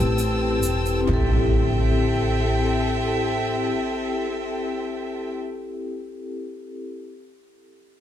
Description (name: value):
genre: trip hop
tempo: 68 BPM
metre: 4/4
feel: swing 54% on 16ths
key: A minor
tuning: A4 = 440 Hz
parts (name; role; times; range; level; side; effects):
- vibraphone with medium mallets; accompaniment; 0.0-7.1 s; C4 to B4; -26 LUFS; left 3 dB; harmonic tremolo, tape echo
- rich studio violin section; sustained chords; 0.0-5.4 s; C4 to E6; -27 LUFS; equal; none
- upright bass; bass; 0.0-3.7 s; E1 to A1; -24 LUFS; right 1 dB; tube saturation
- egg shaker; percussion; 0.2-1.0 s; none; -33 LUFS; right 4 dB; none
- impact; sound effects; 1.1-6.0 s; none; -27 LUFS; equal; none
room: light reverb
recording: none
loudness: -21 LUFS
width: side -10 dB against mid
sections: 0.0-1.1 A section; 1.1-4.6 B section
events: filter sweep on upright bass 0.0-1.1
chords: 0.0 Am7